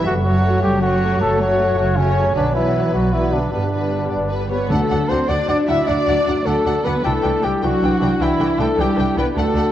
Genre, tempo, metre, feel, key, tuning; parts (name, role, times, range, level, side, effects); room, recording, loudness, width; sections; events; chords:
cinematic, heroic adventure film score; 103 BPM (dotted quarters); 12/8; straight; D mixolydian from 4.7 s; A4 = 441 Hz
warm symphonic violin section; melody; 0.0-9.6 s; B4 to G5; -29 LUFS; left 3 dB
mellow hollow flute section; second line; 0.0-4.4 s; A4 to D5; -25 LUFS; left 1 dB
warm symphonic violin section; second line; 0.0-9.7 s; A3 to E5; -27 LUFS; left 3 dB
warm symphonic viola section; accompaniment; 0.0-9.6 s; E3 to D4; -27 LUFS; equal
mellow trumpet; stabs; 0.0-9.7 s; C#4 to E5; -21 LUFS; equal
dark symphonic cello section; bass; 0.0-9.7 s; C#3 to E4; -24 LUFS; right 2 dB
dark symphonic double bass section; bass; 0.0-9.6 s; F#1 to D2; -22 LUFS; right 1 dB
mellow French horn section; sustained chords; 0.4-9.7 s; A3 to G4; -26 LUFS; left 4 dB
timpani; percussion; 4.7-5.3 s; D3; -25 LUFS; equal
moderate scoring stage reverb, RT60 2.0 s; worn, warbling old tape, cassette tape, warbly pitch drift; -16 LUFS; side -11 dB against mid
0.0-4.7 A section; 4.7-9.7 B section
0.1 F#m; 2.4 Bm; 3.5 G; 4.7 D; 7.0 Cadd9